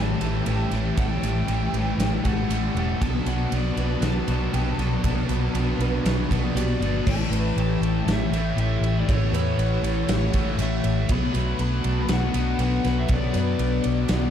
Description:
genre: rock, shoegaze and dream pop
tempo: 119 BPM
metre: 4/4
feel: straight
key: A mixolydian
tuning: A4 = 440 Hz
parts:
  - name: lead guitar through a small cranked amp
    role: melody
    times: 0.0-14.3 s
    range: C#5 to B5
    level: -33 LUFS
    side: equal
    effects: overdrive, tape echo
  - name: chorused pulse-width pad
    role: sustained chords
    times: 0.0-14.3 s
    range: A3 to A5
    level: -35 LUFS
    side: right 1 dB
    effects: none
  - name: picked twelve-string acoustic guitar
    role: arpeggios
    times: 0.0-14.3 s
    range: G4 to C#5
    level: -36 LUFS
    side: right 4 dB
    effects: lush chorus, tape echo
  - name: distorted electric guitar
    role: riff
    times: 0.0-14.3 s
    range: A2 to B3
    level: -31 LUFS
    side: equal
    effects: overdrive
  - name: overdriven semi-hollow guitar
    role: riff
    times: 0.0-7.1 s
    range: A2 to G4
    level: -32 LUFS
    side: right 11 dB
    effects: reverse reverb
  - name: thick fuzz guitar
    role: riff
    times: 0.0-14.3 s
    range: A2 to B3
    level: -27 LUFS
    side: left 7 dB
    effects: distortion, lush chorus
  - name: vintage muted fingered electric bass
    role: bass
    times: 0.0-14.3 s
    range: E1 to F#2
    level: -25 LUFS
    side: right 1 dB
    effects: none
  - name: gated 80s drum kit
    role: drums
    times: 0.2-14.2 s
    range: crash cymbal, kick drum, ride cymbal, snare drum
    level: -29 LUFS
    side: right 1 dB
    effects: none
room: light reverb, studio ambience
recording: dark, warm production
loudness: -21 LUFS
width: side -9 dB against mid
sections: 0.0-7.1 A section; 7.1-14.3 B section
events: none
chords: 0.0 A7; 3.0 Bm7; 7.1 A7; 11.1 Bm7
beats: 0.46 | 0.97 1.48 1.99 2.50 | 3.01 3.52 4.02 4.53 | 5.04 5.55 6.05 6.56 | 7.06 7.57 8.07 8.58 | 9.08 9.58 10.09 10.59 | 11.09 11.59 12.10 12.60 | 13.10 13.60 14.10

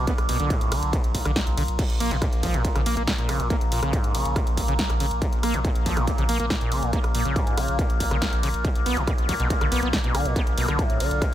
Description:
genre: driving peak-time techno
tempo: 140 BPM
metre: 4/4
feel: straight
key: Bb phrygian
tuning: A4 = 440 Hz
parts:
  - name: overdriven acid bass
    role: riff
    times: 0.0-11.3 s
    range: Ab2 to B3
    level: -28 LUFS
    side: equal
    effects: analog chorus, sidechain pumping, ping-pong delay
  - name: saturated sub bass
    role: bass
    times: 0.0-11.2 s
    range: Bb1 to B1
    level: -28 LUFS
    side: equal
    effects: tube saturation, sidechain pumping, low-pass filter
  - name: overtone-sweeping drone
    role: drone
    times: 0.0-11.3 s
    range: Bb2 to Bb3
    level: -30 LUFS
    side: left 1 dB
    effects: chorus, built-in reverb, sidechain pumping
  - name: electronic kick drum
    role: drums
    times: 0.1-11.3 s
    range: none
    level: -24 LUFS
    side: equal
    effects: distortion
  - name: punchy analog drum machine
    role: drums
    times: 0.1-11.3 s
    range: crash cymbal, hi-hat, ride cymbal, rim click, snare drum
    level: -31 LUFS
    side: equal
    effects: sidechain pumping on hats, sidechain pumping on cymbals
room: little or no reverb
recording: none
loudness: -21 LUFS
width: side -12 dB against mid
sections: 0.0-11.3 A section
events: none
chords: 0.0 Bm; 1.8 Bbm; 8.6 Bm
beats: | 0.07 0.50 0.93 1.36 | 1.79 2.22 2.65 3.07 | 3.50 3.93 4.36 4.79 | 5.22 5.65 6.07 6.50 | 6.93 7.36 7.79 8.22 | 8.65 9.07 9.50 9.93 | 10.36 10.79 11.22

